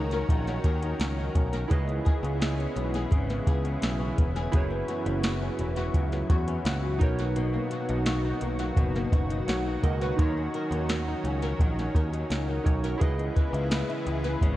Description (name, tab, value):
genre	indie pop, bedroom pop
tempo	85 BPM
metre	4/4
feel	straight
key	B major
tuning	A4 = 440 Hz
part	flamenco guitar	accompaniment	0.0-14.6 s	F#2 to B4	-33 LUFS	left 4 dB	ensemble chorus, vibrato effect, tape echo
part	warm analog keys	accompaniment	0.0-14.6 s	D#4 to F#5	-35 LUFS	right 5 dB	chorus
part	lush unison pad	sustained chords	0.0-14.6 s	B2 to A#4	-35 LUFS	equal	chorus
part	picked electric bass	bass	0.0-14.6 s	E1 to E2	-30 LUFS	equal	none
part	soft vintage rhythm box	drums	0.1-14.6 s	hi-hat, kick drum, snare drum	-27 LUFS	equal	none
room	light reverb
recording	echo-heavy mix, cassette tape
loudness	-25 LUFS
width	side -15 dB against mid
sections	0.0-14.6 A section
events	none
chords	0.0 D#m7; 1.7 C#m7; 4.5 F#7sus4; 7.0 Bmaj7; 10.2 D#m7; 13.0 C#m7